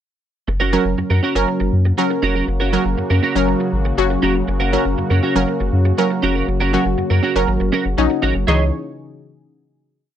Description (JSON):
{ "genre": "pop", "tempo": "120 BPM", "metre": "4/4", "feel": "straight", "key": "unclear", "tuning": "A4 = 440 Hz", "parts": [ { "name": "sweeping resonant pad", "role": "sustained chords", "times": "0.5-8.7 s", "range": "C#3 to G#4", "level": "-25 LUFS", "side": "left 2 dB", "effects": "chorus" }, { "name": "twelve-string electric guitar", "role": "riff", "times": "0.5-8.6 s", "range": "C#4 to D#5", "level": "-21 LUFS", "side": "right 4 dB", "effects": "analog chorus" }, { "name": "round analog bass", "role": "bass", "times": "0.5-8.7 s", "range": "E#1 to F#2", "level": "-19 LUFS", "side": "equal", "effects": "none" }, { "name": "analog pluck", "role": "accompaniment", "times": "0.7-8.7 s", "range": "E3 to C#5", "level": "-19 LUFS", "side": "right 1 dB", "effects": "chorus" } ], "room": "light reverb", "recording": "dry, close 1970s-style studio recording", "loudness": "-15 LUFS", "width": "side -10 dB against mid", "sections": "0.5-8.5 pre-chorus; 8.5-10.2 final chord", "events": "none", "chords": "0.5 F#; 8.5 C#madd9" }